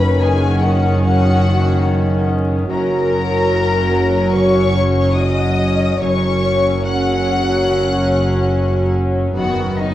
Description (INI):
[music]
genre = cinematic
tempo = 72 BPM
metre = 4/4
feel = rubato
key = F# major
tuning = A4 = 440 Hz
[part]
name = rich studio violin section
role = melody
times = 0.0-9.9 s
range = D#5 to F#6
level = -25 LUFS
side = left 5 dB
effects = none
[part]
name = dark studio violin section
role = second line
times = 0.0-9.9 s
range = D#4 to F#5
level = -22 LUFS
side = left 2 dB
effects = none
[part]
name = warm studio viola section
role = accompaniment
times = 0.0-9.9 s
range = D#3 to C#4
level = -19 LUFS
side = right 1 dB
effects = none
[part]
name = concert harp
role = arpeggios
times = 0.0-9.9 s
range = F#2 to F#5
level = -24 LUFS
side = left 5 dB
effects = none
[part]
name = warm studio cello section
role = bass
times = 0.0-9.9 s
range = F#2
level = -21 LUFS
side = right 2 dB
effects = none
[part]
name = warm studio double bass section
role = bass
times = 0.0-9.9 s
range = F#1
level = -19 LUFS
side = right 1 dB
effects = none
[part]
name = timpani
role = percussion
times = 0.0-0.6, 9.4-9.9 s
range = none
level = barely audible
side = none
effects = none
[sound]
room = moderate recital hall reverb, RT60 1.5 s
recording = worn, warbling old tape, cassette tape, vinyl crackle, warbly pitch drift, faint mains hum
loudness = -14 LUFS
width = side -13 dB against mid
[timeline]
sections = 0.0-9.9 A section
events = timpani fill 9.4-9.9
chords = 0.0 Badd9/F# (rootless); 2.7 F#; 9.4 G#m7/F# (rootless)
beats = 0.21 1.04 1.87 | 2.69 3.52 4.34 5.17 | 6.01 6.86 7.70 8.53 | 9.36